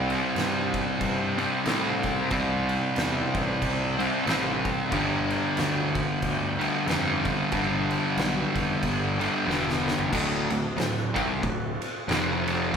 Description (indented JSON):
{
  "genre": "stoner and doom metal",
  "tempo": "92 BPM",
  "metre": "4/4",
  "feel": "swing 58% on 8ths",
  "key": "unclear",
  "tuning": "A4 = 440 Hz",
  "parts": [
    { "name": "fuzz guitar", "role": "riff", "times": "0.0-12.8 s", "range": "D2 to C4", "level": "-25 LUFS", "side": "equal", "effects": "distortion" },
    { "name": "fuzz picked electric bass", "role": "bass", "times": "0.0-12.8 s", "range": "D1 to A2", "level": "-33 LUFS", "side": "equal", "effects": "overdrive" },
    { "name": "oversized low-tuned drum kit", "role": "drums", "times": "0.1-12.8 s", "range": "crash cymbal, kick drum, ride cymbal, snare drum, toms", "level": "-30 LUFS", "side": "right 1 dB", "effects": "none" }
  ],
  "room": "light reverb",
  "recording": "band playing live in one room",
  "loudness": "-24 LUFS",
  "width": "side -7 dB against mid",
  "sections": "0.0-10.1 A section; 10.1-12.8 B section",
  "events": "drum fill 9.5-10.1",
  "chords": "0.0 C5; 4.9 G5; 10.1 D5; 12.1 F5"
}